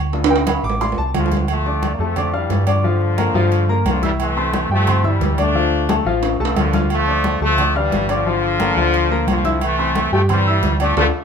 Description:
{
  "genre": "latin, salsa",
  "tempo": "177 BPM",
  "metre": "4/4",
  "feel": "straight",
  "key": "D minor",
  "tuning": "A4 = 437 Hz",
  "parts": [
    { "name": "hollow-body short-scale fingered electric bass", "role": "bass", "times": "0.0-11.1 s", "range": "G1 to G2", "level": "-20 LUFS", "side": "right 1 dB", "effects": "none" },
    { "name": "clear baby grand piano", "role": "accompaniment", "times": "0.1-11.1 s", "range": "F3 to F6", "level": "-21 LUFS", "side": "left 3 dB", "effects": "none" },
    { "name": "congas", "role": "percussion", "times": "0.1-11.1 s", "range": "none", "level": "-26 LUFS", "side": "left 3 dB", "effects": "none" },
    { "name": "timbales and agogo bells", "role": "percussion", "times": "0.1-11.0 s", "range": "none", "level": "-24 LUFS", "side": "right 4 dB", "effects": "none" },
    { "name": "brilliant trombone section", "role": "melody", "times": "1.2-11.1 s", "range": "D3 to D4", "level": "-20 LUFS", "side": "left 1 dB", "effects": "none" }
  ],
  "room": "moderate large studio reverb, RT60 1.2 s",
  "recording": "minimal, uncompressed stereo recording",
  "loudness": "-15 LUFS",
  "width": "side -6 dB against mid",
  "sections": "0.0-1.5 A section; 1.5-11.2 B section",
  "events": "grand piano solo 0.0-1.5; drum fill 0.1-1.5, 6.2-6.9; band accent 11.0",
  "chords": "0.1 Dm; 2.8 Gm7; 4.2 C; 5.6 Dm; 8.3 Gm7; 9.6 C"
}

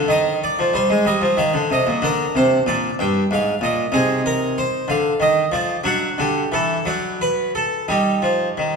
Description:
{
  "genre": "classical, baroque-style suite movement for harpsichord",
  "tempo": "58-64 BPM (dotted quarters)",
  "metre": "6/8",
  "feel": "rubato",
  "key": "C minor",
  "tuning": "A4 = 440 Hz",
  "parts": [
    { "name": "harpsichord", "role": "solo", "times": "0.0-8.8 s", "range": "G2 to G5", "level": "-17 LUFS", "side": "equal", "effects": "none" }
  ],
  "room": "wet concert hall reverb, RT60 2.2 s",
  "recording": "dark, warm production",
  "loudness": "-17 LUFS",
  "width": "side -5 dB against mid",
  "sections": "0.0-8.8 A section",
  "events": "none",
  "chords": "0.1 Cm/Eb; 2.0 Bb; 3.0 Fm11/G; 3.9 Cm7; 4.9 Dm; 5.8 D; 7.9 Ebadd9"
}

